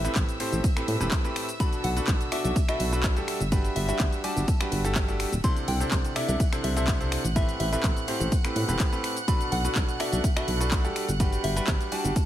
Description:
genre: piano house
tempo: 125 BPM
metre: 4/4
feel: straight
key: A dorian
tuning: A4 = 440 Hz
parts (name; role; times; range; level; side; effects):
- soft synth bell; melody; 0.0-12.3 s; E5 to C6; -35 LUFS; left 1 dB; chorus, digital delay
- clear chamber violin section; sustained chords; 0.0-12.3 s; E5 to F#6; -37 LUFS; right 2 dB; sidechain pumping
- bright concert grand piano; riff; 0.0-12.1 s; A2 to D5; -30 LUFS; equal; sidechain pumping, digital delay
- solid FM bass; bass; 0.0-12.1 s; D1 to A2; -28 LUFS; equal; sidechain pumping
- house drum kit; drums; 0.0-12.3 s; cabasa, finger snaps, handclaps, hi-hat, ride cymbal; -33 LUFS; left 1 dB; overdrive, studio reverb
- electronic kick drum; drums; 0.2-12.3 s; none; -25 LUFS; equal; overdrive, studio reverb
room: little or no reverb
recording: none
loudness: -23 LUFS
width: side -12 dB against mid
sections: 0.0-12.3 A section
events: none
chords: 0.0 Am9; 1.6 Bm7; 3.3 Gmaj7; 5.4 C69; 7.4 Am9; 9.3 Bm7; 11.0 Gmaj7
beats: 0.16 0.64 1.12 | 1.60 2.08 2.56 3.04 | 3.52 4.00 4.48 4.96 | 5.44 5.92 6.40 6.88 | 7.36 7.84 8.32 8.80 | 9.28 9.76 10.24 10.72 | 11.20 11.68 12.16

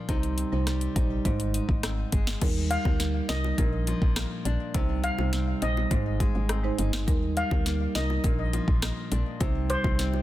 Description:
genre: dancehall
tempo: 103 BPM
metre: 4/4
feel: straight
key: Eb major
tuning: A4 = 441 Hz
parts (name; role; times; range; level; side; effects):
- nylon-string guitar; arpeggios; 0.0-10.2 s; Ab2 to Eb4; -36 LUFS; left 5 dB; digital delay
- marimba with soft mallets; accompaniment; 0.1-10.2 s; F3 to C5; -32 LUFS; right 4 dB; none
- woody FM bass; bass; 0.1-10.2 s; G1 to Eb2; -28 LUFS; equal; none
- afro-pop drum kit; drums; 0.1-10.1 s; crash cymbal, hi-hat, kick drum, rim click, snare drum; -28 LUFS; equal; none
- bongos; percussion; 2.4-10.2 s; none; -40 LUFS; left 7 dB; none
- steel pan; melody; 2.7-9.8 s; C5 to F5; -33 LUFS; left 3 dB; digital delay
room: little or no reverb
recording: dense, heavily limited modern master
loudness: -24 LUFS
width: side -14 dB against mid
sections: 0.0-2.4 A section; 2.4-10.2 B section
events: none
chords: 0.1 Cm; 1.3 Ab; 2.4 Eb; 3.6 Bb; 4.7 Cm; 5.9 Ab; 7.1 Eb; 8.2 Bb; 9.4 Cm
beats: | 0.09 0.67 1.25 1.83 | 2.42 3.00 3.58 4.16 | 4.75 5.33 5.91 6.49 | 7.08 7.66 8.24 8.82 | 9.41 9.99

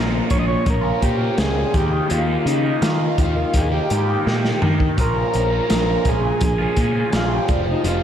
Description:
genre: psychedelic rock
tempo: 84 BPM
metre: 4/4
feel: straight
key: Bb dorian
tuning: A4 = 440 Hz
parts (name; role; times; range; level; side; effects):
- raw garage guitar; riff; 0.0-8.0 s; Bb2 to G4; -24 LUFS; right 1 dB; overdrive, phaser
- fuzz picked electric bass; bass; 0.0-8.0 s; F1 to Eb3; -22 LUFS; equal; overdrive
- combo organ; melody; 0.3-8.0 s; Eb4 to Eb5; -22 LUFS; equal; ping-pong delay
- crunchy breakbeat drum kit; drums; 0.3-8.0 s; hi-hat, kick drum, snare drum, toms; -22 LUFS; equal; none
room: moderate lush hall reverb, RT60 3.1 s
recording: dreamy mix soaked in reverb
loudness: -17 LUFS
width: side -9 dB against mid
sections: 0.0-8.0 A section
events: drum fill 4.3-5.0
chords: 0.0 Bbm; 1.7 Eb; 5.0 Bbm; 7.5 Fsus2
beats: 0.67 1.39 | 2.11 2.82 3.54 4.26 | 4.98 5.70 6.41 7.13 | 7.85

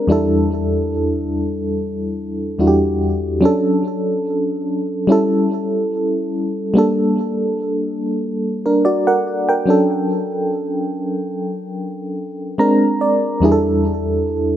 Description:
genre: R&B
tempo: 72 BPM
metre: 4/4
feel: swing 54% on 16ths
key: D major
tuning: A4 = 440 Hz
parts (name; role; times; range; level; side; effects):
- FM electric piano with tremolo; solo; 0.0-14.6 s; E2 to Bb5; -16 LUFS; equal; digital delay
room: light reverb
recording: none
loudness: -16 LUFS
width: side -11 dB against mid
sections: 0.0-6.8 A section; 6.8-14.6 B section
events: FM electric piano fill 12.2-13.4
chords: 0.1 A7sus4/E; 3.4 Dmaj7; 5.1 A7; 6.8 Gmadd9; 9.7 Dmaj7; 12.6 Bb9; 13.4 A7sus4/E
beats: | 0.09 0.92 1.76 2.59 | 3.42 4.26 5.09 5.92 | 6.76 7.59 8.42 9.26 | 10.09 10.92 11.76 12.59 | 13.42 14.26

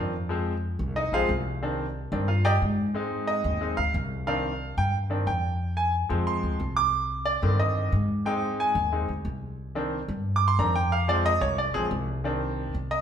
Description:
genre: latin, salsa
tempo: 181 BPM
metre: 4/4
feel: straight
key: C minor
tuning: A4 = 440 Hz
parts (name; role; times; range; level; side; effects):
- bright grand piano; accompaniment; 0.0-13.0 s; D3 to D6; -26 LUFS; right 1 dB; none
- upright bass; bass; 0.0-13.0 s; Bb1 to Ab2; -28 LUFS; equal; none
room: wet large studio reverb, RT60 1.3 s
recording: band playing live in one room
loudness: -24 LUFS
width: side -8 dB against mid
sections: 0.0-13.0 A section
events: grand piano solo 0.0-13.0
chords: 0.3 Fm; 1.6 Cmadd9; 3.0 Ab; 4.3 Cmadd9; 5.6 Fm; 6.9 Cmadd9; 10.9 Fm; 12.2 Ab (rootless)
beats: | 0.30 0.63 0.96 1.29 | 1.62 1.96 2.29 2.62 | 2.95 3.28 3.62 3.95 | 4.28 4.61 4.94 5.27 | 5.61 5.94 6.27 6.60 | 6.93 7.27 7.60 7.93 | 8.26 8.60 8.93 9.26 | 9.59 9.92 10.26 10.59 | 10.92 11.25 11.58 11.91 | 12.25 12.58 12.91

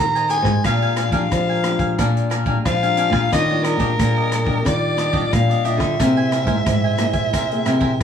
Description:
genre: samba and choro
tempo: 90 BPM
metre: 4/4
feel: straight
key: unclear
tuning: A4 = 438 Hz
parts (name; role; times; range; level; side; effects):
- growling soprano saxophone; melody; 0.0-8.0 s; Bb4 to Bb5; -22 LUFS; left 1 dB; none
- nylon-string guitar; accompaniment; 0.0-8.0 s; Bb2 to Bb4; -26 LUFS; left 5 dB; none
- nylon-string guitar; bass; 0.0-8.0 s; Ab2 to F3; -20 LUFS; equal; none
- cavaquinho; accompaniment; 0.2-7.9 s; D4 to Ab5; -26 LUFS; right 2 dB; none
- swinging big-band drum kit; drums; 0.2-8.0 s; hi-hat, kick drum, rim click; -24 LUFS; right 1 dB; none
room: moderate studio reverb, RT60 0.5 s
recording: small room ambience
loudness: -16 LUFS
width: side -8 dB against mid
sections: 0.0-8.0 A section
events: none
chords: 0.0 Abmaj9; 0.6 Bb6; 3.3 Ebmaj9; 6.0 C7b13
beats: | 0.65 1.32 1.99 2.65 | 3.32 3.99 4.66 5.33 | 6.00 6.67 7.34 8.01

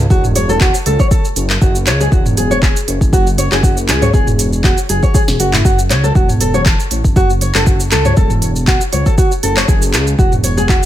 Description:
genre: afro house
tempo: 119 BPM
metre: 4/4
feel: swing 54% on 16ths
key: F# minor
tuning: A4 = 443 Hz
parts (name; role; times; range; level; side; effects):
- dark detuned saw bass; bass; 0.0-10.8 s; E1 to C#2; -16 LUFS; equal; sidechain pumping
- nylon-string guitar; arpeggios; 0.1-10.8 s; E4 to C#5; -17 LUFS; equal; vintage 12-bit sampler grit, sidechain pumping, tape echo
- afro-pop drum kit; drums; 0.1-10.9 s; handclaps, hi-hat, shaker, snare drum, toms; -18 LUFS; right 1 dB; small room ambience
- electronic kick drum; drums; 0.1-10.8 s; none; -12 LUFS; equal; small room ambience
room: digital ambience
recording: none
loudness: -10 LUFS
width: side -12 dB against mid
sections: 0.0-10.9 A section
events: drum fill 5.1-5.7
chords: 0.0 F#m7; 1.6 E; 5.7 F#m7; 9.7 E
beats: 0.10 0.61 1.11 | 1.62 2.12 2.62 3.13 | 3.63 4.14 4.64 5.15 | 5.65 6.16 6.66 7.16 | 7.67 8.17 8.68 9.18 | 9.68 10.19 10.69

